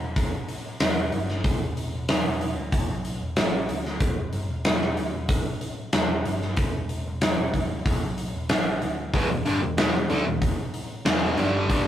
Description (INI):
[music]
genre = hard rock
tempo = 94 BPM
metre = 4/4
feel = straight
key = E minor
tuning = A4 = 437 Hz
[part]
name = overdriven picked electric bass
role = bass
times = 0.0-11.9 s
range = E1 to D2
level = -32 LUFS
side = equal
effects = none
[part]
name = big rock drum kit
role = drums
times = 0.2-11.8 s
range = hi-hat, kick drum, snare drum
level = -24 LUFS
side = equal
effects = none
[part]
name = distorted electric guitar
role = riff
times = 9.1-11.9 s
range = E2 to A3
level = -24 LUFS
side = equal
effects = overdrive
[sound]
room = moderate studio reverb, RT60 0.6 s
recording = rough rehearsal-room recording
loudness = -23 LUFS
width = side -11 dB against mid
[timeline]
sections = 0.0-11.9 A section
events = none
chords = 0.0 Em